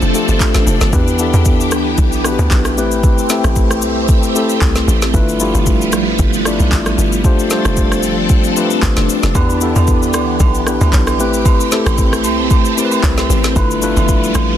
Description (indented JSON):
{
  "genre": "amapiano",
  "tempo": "114 BPM",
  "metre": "4/4",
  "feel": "swing 55% on 16ths",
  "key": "A minor",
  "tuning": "A4 = 440 Hz",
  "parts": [
    { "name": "mellow tine electric piano", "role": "accompaniment", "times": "0.0-14.6 s", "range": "G3 to D5", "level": "-17 LUFS", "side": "left 3 dB", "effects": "none" },
    { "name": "phased string machine", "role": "sustained chords", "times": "0.0-14.6 s", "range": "E3 to A4", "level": "-20 LUFS", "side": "right 1 dB", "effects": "ensemble chorus, phaser, sidechain pumping" },
    { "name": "tight log drum bass", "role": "bass", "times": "0.0-14.6 s", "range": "F1 to E2", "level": "-16 LUFS", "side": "equal", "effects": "none" },
    { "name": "afro-pop drum kit", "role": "drums", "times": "0.0-14.5 s", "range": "handclaps, kick drum, rim click, shaker, snare drum", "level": "-15 LUFS", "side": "equal", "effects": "none" },
    { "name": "agogo bells and woodblock", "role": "percussion", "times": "9.3-14.5 s", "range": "none", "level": "-23 LUFS", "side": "right 11 dB", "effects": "none" }
  ],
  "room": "little or no reverb",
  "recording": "dense, heavily limited modern master",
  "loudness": "-11 LUFS",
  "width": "side -10 dB against mid",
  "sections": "0.0-14.6 A section",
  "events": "none",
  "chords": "0.0 F6; 0.9 Em7; 2.8 Am9; 5.1 G13; 7.2 F6; 9.3 Em7; 11.2 Am9; 13.6 G13"
}